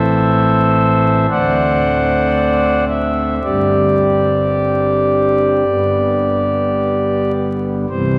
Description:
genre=classical, chorale-style piece for pipe organ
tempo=53-61 BPM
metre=4/4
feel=rubato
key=unclear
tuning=A4 = 440 Hz
part: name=pipe organ, principal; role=solo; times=0.0-8.2 s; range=D1 to F#5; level=-15 LUFS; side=equal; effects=none
room=wet church reverb, RT60 3.1 s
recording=vinyl crackle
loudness=-15 LUFS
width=mono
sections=0.0-7.9 A section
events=none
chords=0.0 Am; 1.3 D7; 3.4 Gsus4; 5.7 G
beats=0.28 1.31 2.35 | 3.43 4.56 5.68 6.80 | 7.90

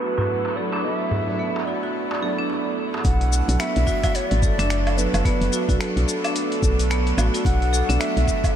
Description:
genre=organic downtempo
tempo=109 BPM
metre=4/4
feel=swing 59% on 16ths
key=unclear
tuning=A4 = 439 Hz
part: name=breathy mellow Native American-style cedar flute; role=melody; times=0.0-8.5 s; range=A4 to F#5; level=-27 LUFS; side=right 1 dB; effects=ping-pong delay
part: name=felt-muted upright piano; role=accompaniment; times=0.0-8.6 s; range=F#3 to A4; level=-30 LUFS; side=right 5 dB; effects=sidechain pumping, analog delay
part: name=rich chamber string section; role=sustained chords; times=0.0-8.6 s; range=F#3 to A4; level=-30 LUFS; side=equal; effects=sidechain pumping
part: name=marimba with hard mallets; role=arpeggios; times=0.0-8.0 s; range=B3 to A4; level=-28 LUFS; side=left 1 dB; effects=analog delay
part: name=drifting glass-harmonics texture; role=texture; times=0.0-3.1 s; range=F#5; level=-42 LUFS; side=left 3 dB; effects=none
part: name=darbuka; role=percussion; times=0.2-3.0 s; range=none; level=-30 LUFS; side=equal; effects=none
part: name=woody FM bass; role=bass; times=3.0-8.3 s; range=F#1 to B1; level=-21 LUFS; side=equal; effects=sidechain pumping
part: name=dusty soul sampler-style drum kit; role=drums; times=3.0-8.5 s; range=cabasa, finger snaps, hi-hat, woodblock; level=-29 LUFS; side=left 1 dB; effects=low-pass filter on hats, low-pass filter on perc, low-pass filter on snare, low-pass filter on room
part: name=electronic kick drum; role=drums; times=3.0-8.5 s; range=none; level=-22 LUFS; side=equal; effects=none
room=moderate huge ambient reverb, RT60 8.1 s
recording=dreamy mix soaked in reverb, low-pass filter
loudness=-19 LUFS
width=side -9 dB against mid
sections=0.0-3.0 A section; 3.0-8.6 B section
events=filter sweep on marimba 0.0-3.0; filter sweep 0.0-3.0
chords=0.0 Bm7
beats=0.29 | 0.85 1.40 1.95 2.50 | 3.05 3.60 4.15 4.70 | 5.25 5.80 6.35 6.90 | 7.45 8.00 8.55

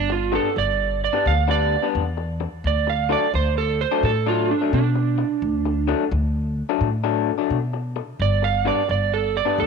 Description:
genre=electric blues shuffle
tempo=86 BPM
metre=4/4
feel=swing 66% on 8ths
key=D major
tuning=A4 = 440 Hz
part: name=electric slide guitar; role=melody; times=0.0-9.7 s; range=D4 to F5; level=-22 LUFS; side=right 11 dB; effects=none
part: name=upright bass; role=bass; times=0.0-9.7 s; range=G1 to B2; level=-23 LUFS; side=left 1 dB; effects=tube saturation
part: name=electric guitar through a small old amp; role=riff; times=0.1-9.7 s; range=G2 to D4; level=-25 LUFS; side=left 16 dB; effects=none
room=light reverb, small room ambience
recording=1960s-style stereo with parts hard left and right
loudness=-19 LUFS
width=side -5 dB against mid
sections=0.0-9.7 A section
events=electric slide guitar solo 0.0-9.7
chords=0.0 G; 2.6 D; 8.2 G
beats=0.56 1.25 1.95 | 2.64 3.33 4.03 4.72 | 5.42 6.11 6.81 7.50 | 8.20 8.89 9.58

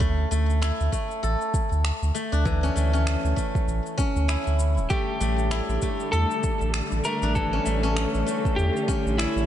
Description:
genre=organic downtempo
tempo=98 BPM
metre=4/4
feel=swing 58% on 16ths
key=unclear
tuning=A4 = 443 Hz
part: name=steel-string zither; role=arpeggios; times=0.0-9.5 s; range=E3 to A4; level=-28 LUFS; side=left 2 dB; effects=ping-pong delay
part: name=warm sub bass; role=bass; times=0.0-9.5 s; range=D1 to E2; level=-24 LUFS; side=equal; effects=none
part: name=electronic cabasa and finger snaps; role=drums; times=0.0-9.5 s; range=none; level=-34 LUFS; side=left 1 dB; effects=studio reverb
part: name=electronic kick drum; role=drums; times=0.0-9.0 s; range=none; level=-27 LUFS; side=equal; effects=studio reverb
part: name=electric slide guitar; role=melody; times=4.9-9.5 s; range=E4 to Bb4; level=-28 LUFS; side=equal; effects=ping-pong delay
part: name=clear symphonic string section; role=sustained chords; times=4.9-9.5 s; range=D3 to A3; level=-31 LUFS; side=left 2 dB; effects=sidechain pumping
room=light reverb, digital ambience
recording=nothing above 10.6 kHz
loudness=-22 LUFS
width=side -11 dB against mid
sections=0.0-9.5 A section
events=none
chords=0.0 D5; 4.9 A7sus4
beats=| 0.01 0.62 1.23 1.85 | 2.46 3.07 3.68 4.30 | 4.91 5.52 6.13 6.75 | 7.36 7.97 8.58 9.19

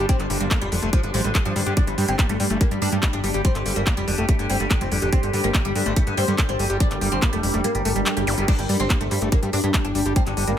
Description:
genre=psychedelic trance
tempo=143 BPM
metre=4/4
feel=straight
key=G minor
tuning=A4 = 440 Hz
part: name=oud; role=melody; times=0.0-10.5 s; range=D3 to D4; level=-27 LUFS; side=equal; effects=phaser, sidechain pumping, tape echo
part: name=overtone-sweeping drone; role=sustained chords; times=0.0-10.6 s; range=G3 to G4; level=-30 LUFS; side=equal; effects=chorus, built-in reverb, sidechain pumping
part: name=overdriven acid bass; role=riff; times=0.0-10.5 s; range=G3 to G4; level=-29 LUFS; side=moving between left 3 dB and right 5 dB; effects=distortion, auto-pan, sidechain pumping, tape echo
part: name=plucky analog bass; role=bass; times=0.0-10.5 s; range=F1 to G2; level=-26 LUFS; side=equal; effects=none
part: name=warbly tape-like pad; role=texture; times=0.0-10.6 s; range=D4 to C6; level=-31 LUFS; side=left 1 dB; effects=chorus, built-in reverb, sidechain pumping
part: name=electronic kick drum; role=drums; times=0.1-10.2 s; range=none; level=-21 LUFS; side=equal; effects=none
part: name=techno drum kit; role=drums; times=0.1-10.6 s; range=crash cymbal, handclaps, hi-hat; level=-27 LUFS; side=left 1 dB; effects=none
part: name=zap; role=sound effects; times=8.3-8.4 s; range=none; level=-30 LUFS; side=equal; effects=none
room=little or no reverb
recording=none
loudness=-19 LUFS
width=side -10 dB against mid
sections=0.0-10.6 A section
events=kick drops out 7.6-8.5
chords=0.0 G5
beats=| 0.09 0.51 0.93 1.35 | 1.77 2.19 2.61 3.03 | 3.45 3.87 4.29 4.71 | 5.13 5.54 5.96 6.38 | 6.80 7.22 7.64 8.06 | 8.48 8.90 9.32 9.74 | 10.16 10.58

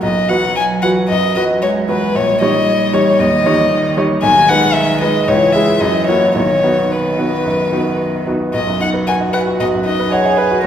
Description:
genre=quick classical-period movement for piano trio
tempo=113 BPM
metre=4/4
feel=straight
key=B major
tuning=A4 = 440 Hz
part: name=warm violin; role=melody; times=0.0-10.7 s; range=B4 to G#5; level=-15 LUFS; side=left 3 dB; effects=none
part: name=warm cello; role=second line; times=0.0-10.7 s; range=D#3 to A#4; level=-21 LUFS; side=right 4 dB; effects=none
part: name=clear baby grand piano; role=accompaniment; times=0.0-10.7 s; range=A#1 to F#5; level=-16 LUFS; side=right 1 dB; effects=none
room=wet recital hall reverb, RT60 1.8 s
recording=heard from further back in the room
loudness=-12 LUFS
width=side -9 dB against mid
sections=0.0-8.5 A section; 8.5-10.7 B section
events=none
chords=0.0 B5; 2.2 D#7/A#; 4.2 G#m/B; 5.3 C#m; 5.8 F#7; 6.4 B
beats=| 0.02 0.56 1.10 1.63 | 2.15 2.68 3.20 3.72 | 4.24 4.76 5.28 5.81 | 6.35 6.90 7.45 7.99 | 8.54 9.07 9.60 10.12 | 10.64

